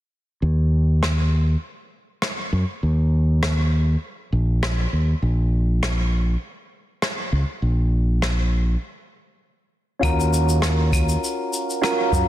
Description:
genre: sunset chillout.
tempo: 100 BPM.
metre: 4/4.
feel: straight.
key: Eb minor.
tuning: A4 = 439 Hz.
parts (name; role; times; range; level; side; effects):
fingered electric bass; bass; 0.4-12.2 s; Bb1 to Gb2; -18 LUFS; equal; none.
rim click, claves and shaker; drums; 1.0-12.3 s; none; -27 LUFS; left 1 dB; soft clipping on snare.
soft electric-piano-like synth keys; accompaniment; 10.0-12.3 s; Db4 to Bb4; -22 LUFS; equal; chorus, auto-pan, vintage 12-bit sampler grit, low-pass filter, digital delay.
electronic kick drum; drums; 10.0-12.3 s; none; -23 LUFS; equal; none.
room: light reverb, small room reverb.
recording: dense, heavily limited modern master.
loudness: -19 LUFS.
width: side -14 dB against mid.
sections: 0.4-10.0 A section; 10.0-12.3 B section.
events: filter sweep on fingered electric bass 0.4-10.0; stop 8.8-10.0.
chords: 0.4 N.C.; 10.0 Ebm9.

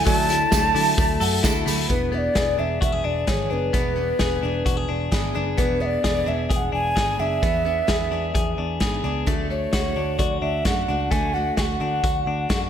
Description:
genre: jangly indie pop.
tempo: 130 BPM.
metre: 4/4.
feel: straight.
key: unclear.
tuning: A4 = 439 Hz.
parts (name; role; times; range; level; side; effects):
alto ocarina; melody; 0.0-12.7 s; B4 to A5; -24 LUFS; right 1 dB; slapback echo.
picked steel-string acoustic guitar; accompaniment; 0.0-12.7 s; D3 to G#4; -31 LUFS; right 7 dB; none.
warbly lo-fi synth keys; accompaniment; 0.0-1.9 s; F#4 to B5; -32 LUFS; right 5 dB; chorus, slapback echo.
direct-recorded clean electric guitar; arpeggios; 0.0-12.7 s; F#3 to A4; -27 LUFS; left 7 dB; slapback echo, ping-pong delay.
vintage muted picked electric bass; bass; 0.0-12.7 s; E1 to D3; -28 LUFS; equal; none.
vintage drum kit; drums; 0.1-12.6 s; hi-hat, kick drum, snare drum; -24 LUFS; equal; none.
tambourine; percussion; 0.1-1.8 s; none; -35 LUFS; right 10 dB; none.
room: moderate lush hall reverb, RT60 1.6 s.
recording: big arena sound.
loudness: -20 LUFS.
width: side -9 dB against mid.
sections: 0.0-1.9 A section; 1.9-12.7 B section.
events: synth keys fill 1.0-1.9.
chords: 0.0 Dadd9; 1.9 E7; 9.3 D.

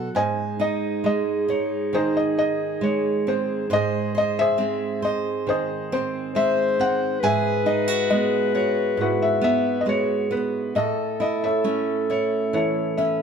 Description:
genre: acoustic folk-pop ballad.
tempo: 68 BPM.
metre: 4/4.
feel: straight.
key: unclear.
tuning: A4 = 440 Hz.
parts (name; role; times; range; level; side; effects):
felt-muted upright piano; melody; 0.0-13.2 s; D#4 to G#5; -24 LUFS; left 1 dB; none.
fingerpicked steel-string acoustic guitar; accompaniment; 0.0-13.2 s; G#2 to B#4; -24 LUFS; right 4 dB; none.
dark clarinet; second line; 0.1-13.2 s; G#4 to B#4; -27 LUFS; left 4 dB; none.
room: light reverb.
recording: band playing live in one room.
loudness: -20 LUFS.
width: side -6 dB against mid.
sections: 0.1-13.2 A section.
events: none.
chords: 0.1 G#; 7.2 Eadd9/G#; 10.8 A.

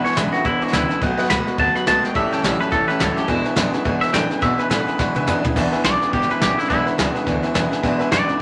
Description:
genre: rockabilly.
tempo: 211 BPM.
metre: 4/4.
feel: swing 58% on 8ths.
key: E mixolydian.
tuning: A4 = 440 Hz.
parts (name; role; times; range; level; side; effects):
twangy electric guitar; melody; 0.0-8.4 s; E4 to B5; -23 LUFS; equal; none.
bright upright piano; accompaniment; 0.0-8.4 s; B4 to B5; -28 LUFS; equal; none.
picked steel-string acoustic guitar; accompaniment; 0.0-8.4 s; E2 to F#4; -27 LUFS; equal; none.
electric guitar through a small old amp; riff; 0.0-8.4 s; E2 to G#3; -26 LUFS; equal; spring reverb.
upright bass; bass; 0.0-8.3 s; G#1 to B2; -32 LUFS; equal; none.
soft brush drum kit; drums; 0.1-8.3 s; crash cymbal, hi-hat, kick drum, snare drum, toms; -26 LUFS; equal; none.
room: wet studio reverb, RT60 0.5 s.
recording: none.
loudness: -19 LUFS.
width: mono.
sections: 0.0-5.6 A section; 5.6-8.4 B section.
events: clean electric guitar solo 0.0-5.6; drum fill 5.0-5.6.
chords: 0.0 E7; 1.0 B7; 2.2 A7; 3.3 E7.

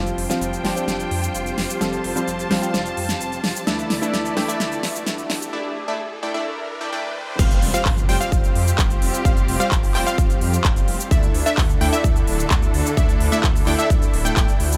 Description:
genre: EDM, festival progressive house.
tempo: 129 BPM.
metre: 4/4.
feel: straight.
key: F major.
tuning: A4 = 441 Hz.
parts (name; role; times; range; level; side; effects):
clear concert grand piano; accompaniment; 0.0-7.4 s; E3 to A4; -31 LUFS; equal; sidechain pumping, dub echo.
rich studio string section; sustained chords; 0.0-14.8 s; D3 to A5; -31 LUFS; equal; sidechain pumping.
supersaw stab; riff; 0.0-14.8 s; G3 to G5; -28 LUFS; equal; sidechain pumping, low-pass filter, dub echo.
detuned saw bass; bass; 0.0-14.8 s; D1 to F2; -28 LUFS; equal; chorus, sidechain pumping.
riser and impact; sound effects; 3.0-9.3 s; none; -35 LUFS; equal; none.
big-room dance drum kit; drums; 0.1-14.8 s; cabasa, crash cymbal, handclaps, hi-hat, snare drum; -28 LUFS; equal; small room ambience.
unison pluck; arpeggios; 7.4-14.8 s; E5 to G5; -30 LUFS; equal; sidechain pumping, dub echo.
electronic kick drum; drums; 7.4-14.5 s; none; -20 LUFS; equal; small room ambience.
room: light reverb.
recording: high-pass filter.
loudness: -20 LUFS.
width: mono.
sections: 0.0-7.4 A section; 7.4-14.8 B section.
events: build-up 0.0-7.4; drum fill 0.0-5.5; filter sweep on supersaw synth 0.0-7.4; riser 3.6-7.4; break 5.5-7.4; drop 7.4-14.8; impact 7.4-9.3.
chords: 0.0 Fsus2; 3.7 Dsus2; 7.4 Fsus2; 11.1 Dsus2.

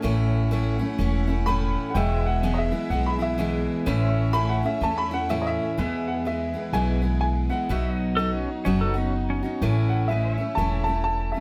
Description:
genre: country.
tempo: 125 BPM.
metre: 4/4.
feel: swing 60% on 8ths.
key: A major.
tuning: A4 = 444 Hz.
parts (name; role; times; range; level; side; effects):
picked steel-string acoustic guitar; accompaniment; 0.0-11.4 s; E2 to F#4; -30 LUFS; equal; none.
pedal steel guitar; sustained chords; 0.0-11.4 s; B4 to E5; -39 LUFS; equal; none.
rich symphonic string section; sustained chords; 0.0-11.4 s; E3 to F#5; -39 LUFS; equal; none.
upright bass; bass; 0.0-11.3 s; E1 to E2; -28 LUFS; equal; none.
warm upright piano; melody; 1.5-11.4 s; D#5 to B5; -30 LUFS; equal; slapback echo.
pedal steel guitar; second line; 8.2-9.7 s; C#4 to A4; -31 LUFS; equal; none.
room: light reverb.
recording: none.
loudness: -24 LUFS.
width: mono.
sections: 0.0-5.8 A section; 5.8-11.4 B section.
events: upright piano solo 0.0-5.8.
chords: 0.0 A; 2.0 E; 3.9 A; 5.8 E; 7.7 B; 9.6 A.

